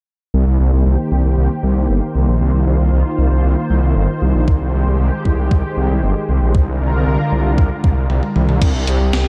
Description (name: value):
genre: synthwave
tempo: 116 BPM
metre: 4/4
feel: straight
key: C minor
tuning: A4 = 440 Hz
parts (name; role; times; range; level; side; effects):
- analog string pad; sustained chords; 0.7-8.6 s; D3 to C5; -23 LUFS; equal; ensemble chorus
- detuned saw bass; bass; 0.3-9.2 s; G1 to C2; -17 LUFS; equal; chorus, sidechain pumping
- electronic kick drum; drums; 4.5-8.7 s; none; -17 LUFS; equal; none
- gated 80s digital drum machine; drums; 8.1-9.2 s; crash cymbal, hi-hat, snare drum, toms; -23 LUFS; equal; gated reverb, gated reverb snare
- expressive synth lead; melody; 8.9-9.3 s; G4; -26 LUFS; equal; subtle chorus
room: light reverb, digital ambience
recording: none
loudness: -16 LUFS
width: mono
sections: 0.3-8.6 A section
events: filter sweep on detuned saw bass 0.3-8.6; filter sweep on analog synth pad 0.3-8.6; drum fill 8.1-8.6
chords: 0.3 Cm7; 4.5 Abmaj7/C; 6.5 Bb7/C; 8.6 Gsus4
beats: | 0.34 0.86 1.37 1.89 | 2.41 2.93 3.44 3.96 | 4.48 5.00 5.51 6.03 | 6.55 7.06 7.58 8.10 | 8.62 9.13